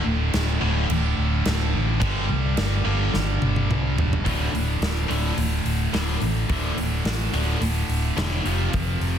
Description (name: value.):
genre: hard rock.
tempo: 107 BPM.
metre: 4/4.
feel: straight.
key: D minor.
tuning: A4 = 441 Hz.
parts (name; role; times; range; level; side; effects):
high-gain distorted guitar; riff; 0.0-9.2 s; D2 to G3; -27 LUFS; right 1 dB; distortion.
fingered electric bass; bass; 0.0-9.2 s; D1 to C2; -24 LUFS; equal; none.
big rock drum kit; drums; 0.3-9.1 s; crash cymbal, hi-hat, kick drum, snare drum, toms; -28 LUFS; equal; none.
heavy high-gain guitar; riff; 0.6-8.7 s; D2 to G3; -28 LUFS; left 1 dB; distortion.
room: light reverb, small room ambience.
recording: dense, heavily limited modern master.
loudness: -21 LUFS.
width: side -9 dB against mid.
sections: 0.0-4.3 A section; 4.3-9.2 B section.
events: drum fill 3.1-4.3.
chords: 0.0 D5; 2.0 G5; 4.3 D5; 8.5 F5.